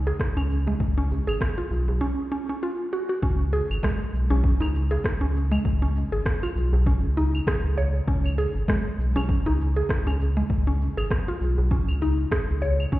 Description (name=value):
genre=organic downtempo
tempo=99 BPM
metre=4/4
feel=swing 56% on 16ths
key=Db mixolydian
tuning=A4 = 442 Hz
part: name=warm sub bass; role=bass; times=0.0-13.0 s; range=Ab1 to Db2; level=-23 LUFS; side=equal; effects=none
part: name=mallet-like synth pluck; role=arpeggios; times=0.1-13.0 s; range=Ab3 to Db5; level=-28 LUFS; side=equal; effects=chorus, tape echo
part: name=electronic cabasa, rim click and claves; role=drums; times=0.1-13.0 s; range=none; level=-33 LUFS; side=equal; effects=overdrive
part: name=djembe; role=percussion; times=0.1-12.8 s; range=none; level=-32 LUFS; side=right 1 dB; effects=none
part: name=electronic kick drum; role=drums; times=0.2-13.0 s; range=none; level=-25 LUFS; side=equal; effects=overdrive
room=light reverb, digital ambience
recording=heard muffled through a wall, stone room reverb, EQ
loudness=-22 LUFS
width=side -16 dB against mid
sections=0.0-3.2 A section; 3.2-13.0 B section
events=break 2.0-3.2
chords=0.0 N.C.; 3.2 Db5